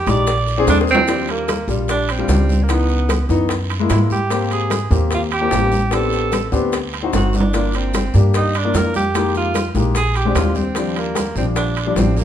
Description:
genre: Afro-Cuban jazz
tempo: 149 BPM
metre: 4/4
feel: straight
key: Eb major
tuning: A4 = 439 Hz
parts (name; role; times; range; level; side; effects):
- warm tenor saxophone; melody; 0.0-12.2 s; Bb3 to D5; -21 LUFS; right 3 dB; none
- warm baby grand piano; accompaniment; 0.1-12.2 s; Fb3 to Ab4; -21 LUFS; left 5 dB; none
- upright bass; bass; 0.1-12.2 s; G1 to Ab2; -19 LUFS; right 1 dB; none
- bongos; percussion; 0.1-12.2 s; none; -28 LUFS; left 7 dB; none
- congas; percussion; 0.1-12.2 s; none; -26 LUFS; left 1 dB; none
- guiro; percussion; 0.1-12.2 s; none; -34 LUFS; right 7 dB; none
- maracas; percussion; 0.1-12.2 s; none; -35 LUFS; left 4 dB; none
- timbales; percussion; 0.1-12.2 s; none; -27 LUFS; right 6 dB; none
room: moderate large studio reverb, RT60 1.0 s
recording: minimal, uncompressed stereo recording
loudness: -15 LUFS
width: side -10 dB against mid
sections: 0.0-1.1 A section; 1.1-12.2 B section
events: tenor saxophone solo 0.0-1.1; drum fill 0.7-1.1, 7.1-7.5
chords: 0.3 Bb9; 1.1 Ebmaj9; 2.7 Dbm7; 3.5 Gb9; 4.3 Abmaj9; 5.9 Am11; 6.7 D7b9; 7.5 Gm7; 9.1 Fm11; 10.0 Bb13; 10.8 Ebmaj9

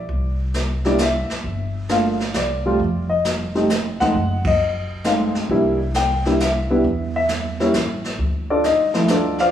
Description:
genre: jazz piano trio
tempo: 133 BPM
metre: 3/4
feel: swing 67% on 8ths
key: C mixolydian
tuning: A4 = 439 Hz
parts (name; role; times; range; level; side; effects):
- dark baby grand piano; melody; 0.0-9.5 s; F3 to G5; -19 LUFS; left 1 dB; none
- upright bass; bass; 0.0-9.5 s; F1 to E2; -25 LUFS; equal; none
- jazz brush drum kit; drums; 0.1-9.5 s; brushed snare drum, hi-hat, kick drum, ride cymbal, snare drum; -26 LUFS; right 1 dB; none
room: moderate recital hall reverb, RT60 1.6 s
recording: recorded in a church or concert hall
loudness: -18 LUFS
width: side -10 dB against mid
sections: 0.0-9.5 A section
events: band accent 4.4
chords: 0.0 Cadd9; 1.4 Gm7; 2.3 Csus2; 2.8 F7(no3); 4.1 F#dim7; 5.5 C9; 6.8 N.C.; 8.2 Dm

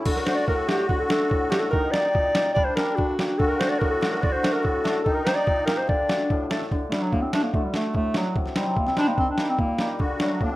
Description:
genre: klezmer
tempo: 145 BPM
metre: 2/4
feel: straight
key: D phrygian dominant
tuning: A4 = 439 Hz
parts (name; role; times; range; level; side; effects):
- musette accordion; second line; 0.0-6.5, 10.0-10.6 s; D4 to F#4; -30 LUFS; left 1 dB; none
- hammered dulcimer; accompaniment; 0.0-10.6 s; A2 to A4; -27 LUFS; left 1 dB; none
- mellow clarinet; melody; 0.1-10.6 s; F#3 to D5; -24 LUFS; equal; none
- boom bap sampler-style drum kit; drums; 0.1-10.5 s; crash cymbal, kick drum, snare drum; -26 LUFS; right 1 dB; none
room: moderate studio reverb, RT60 0.6 s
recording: rough home demo mix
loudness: -21 LUFS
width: side -17 dB against mid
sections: 0.1-6.7 A section; 6.7-10.6 B section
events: none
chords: 0.1 D; 1.7 Eb; 2.6 Gm; 3.4 D; 5.1 Eb; 5.9 D; 8.4 Cm; 9.2 Eb; 10.0 D

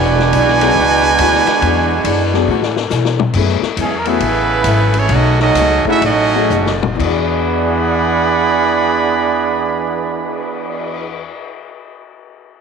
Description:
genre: jazz, big band swing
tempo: 118-139 BPM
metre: 4/4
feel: swing 65% on 8ths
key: E major, E mixolydian from 3.3 s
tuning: A4 = 440 Hz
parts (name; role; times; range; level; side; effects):
- clear trumpet section; melody; 0.0-11.2 s; A3 to B5; -16 LUFS; right 3 dB; tape echo
- clear trombone section; second line; 0.0-11.2 s; B2 to G#4; -18 LUFS; right 10 dB; none
- picked steel-string acoustic guitar; accompaniment; 0.0-11.4 s; B2 to C#5; -24 LUFS; left 14 dB; none
- warm saxophone section; sustained chords; 0.0-2.7 s; D3 to F#4; -26 LUFS; left 12 dB; none
- upright bass; bass; 0.0-11.2 s; E1 to B2; -19 LUFS; left 1 dB; none
- vintage drum kit; drums; 0.2-10.9 s; crash cymbal, cymbal swell, hi-hat, kick drum, ride cymbal, snare drum, toms; -23 LUFS; left 9 dB; none
- clear concert grand piano; accompaniment; 0.6-11.3 s; E2 to D5; -22 LUFS; left 14 dB; none
room: moderate spring reverb, RT60 1.9 s, small room ambience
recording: 1960s-style stereo with parts hard left and right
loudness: -12 LUFS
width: side -6 dB against mid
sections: 0.0-3.3 A section; 3.3-7.0 B section; 7.0-11.1 C section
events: drum fill 2.5-3.3, 6.5-7.0; slowing down 3.3-7.0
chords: 0.0 E13; 3.3 F#m11; 5.1 B13; 7.0 E9

